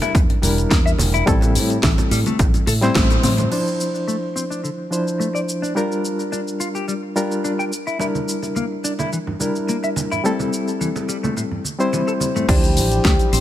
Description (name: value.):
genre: nu-disco, nu disco.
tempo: 107 BPM.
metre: 4/4.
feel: straight.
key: D minor.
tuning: A4 = 440 Hz.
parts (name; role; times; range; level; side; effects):
bright reed electric piano; accompaniment; 0.0-13.4 s; F3 to C5; -22 LUFS; left 1 dB; fast tremolo, ping-pong delay.
clean electric guitar; riff; 0.0-13.4 s; A2 to G5; -26 LUFS; left 3 dB; wide subtle chorus, vintage 12-bit sampler grit, low-pass filter, ping-pong delay.
house drum kit; drums; 0.0-13.4 s; crash cymbal, hi-hat, shaker, snare drum, toms; -25 LUFS; left 1 dB; overdrive, small room ambience.
congas; percussion; 0.0-3.5, 8.0-12.5 s; none; -29 LUFS; right 3 dB; none.
fingered electric bass with an envelope filter; bass; 0.1-3.4, 12.5-13.4 s; E1 to A2; -20 LUFS; equal; none.
electronic kick drum; drums; 0.1-3.1, 12.5-13.2 s; none; -18 LUFS; equal; overdrive, small room ambience.
soft octave-layered synth lead; melody; 12.5-13.4 s; G4; -22 LUFS; left 3 dB; chorus.
room: light reverb, digital ambience.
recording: none.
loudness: -17 LUFS.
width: side -12 dB against mid.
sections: 0.0-3.5 A section; 3.5-12.5 B section.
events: band accent 3.0; drum fill 3.1-3.5.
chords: 0.0 Em7b5; 1.3 Am7; 3.5 Dm9; 5.8 Gm7; 7.7 Em7b5; 10.2 Am7; 12.5 Dm9.